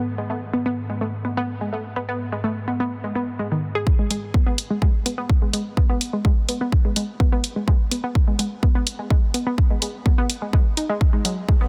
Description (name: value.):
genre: melodic techno.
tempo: 126 BPM.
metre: 4/4.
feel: straight.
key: G# phrygian.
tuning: A4 = 439 Hz.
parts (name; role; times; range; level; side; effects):
unison pluck; arpeggios; 0.0-11.7 s; D#3 to G#4; -28 LUFS; equal; sidechain pumping, delay.
analog drone; drone; 0.0-3.9 s; G#2 to D#3; -35 LUFS; equal; lush chorus, sidechain pumping.
electronic kick drum; drums; 3.9-11.6 s; none; -20 LUFS; equal; none.
electronic hi-hat; drums; 4.1-11.3 s; none; -27 LUFS; equal; none.
riser; sound effects; 11.6-11.7 s; none; -42 LUFS; equal; none.
room: light reverb, digital ambience.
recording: dense, heavily limited modern master.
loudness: -22 LUFS.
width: mono.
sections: 0.0-3.9 A section; 3.9-11.7 B section.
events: build-up 3.9-11.7; riser 11.6.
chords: 0.0 G#m.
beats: | 0.06 0.53 1.01 1.49 | 1.96 2.44 2.92 3.39 | 3.87 4.34 4.82 5.30 | 5.77 6.25 6.72 7.20 | 7.68 8.15 8.63 9.11 | 9.58 10.06 10.53 11.01 | 11.49.